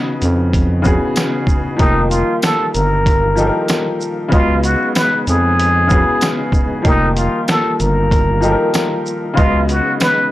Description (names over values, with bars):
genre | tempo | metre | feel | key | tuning
hip hop, boom-bap hip-hop | 95 BPM | 4/4 | swing 55% on 16ths | unclear | A4 = 440 Hz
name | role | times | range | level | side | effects
bright upright piano | accompaniment | 0.0-10.3 s | Db3 to Eb5 | -19 LUFS | left 2 dB | cassette tape, high-pass filter, low-pass filter
percussive tonewheel organ | sustained chords | 0.0-10.3 s | Db3 to Gb4 | -25 LUFS | equal | chorus vibrato, slow rotary speaker, high-pass filter, low-pass filter
growling FM bass | bass | 0.2-9.8 s | F1 to F2 | -16 LUFS | equal | tube saturation
trip hop sampler-style drum kit | drums | 0.2-10.2 s | hi-hat, kick drum, shaker, snare drum | -17 LUFS | equal | none
tambourine | percussion | 1.2-10.2 s | none | -28 LUFS | right 1 dB | none
trumpet with plunger mute | melody | 1.8-10.3 s | Eb4 to Cb5 | -17 LUFS | equal | high-pass filter, low-pass filter, tape echo
room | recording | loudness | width
small room ambience | dry, gritty hardware recording | -13 LUFS | side -15 dB against mid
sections
0.0-10.3 A section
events
break 0.0-1.8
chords
0.0 Db9sus4; 1.8 F9sus4; 4.3 Db9sus4; 6.8 F9sus4; 9.4 Db9sus4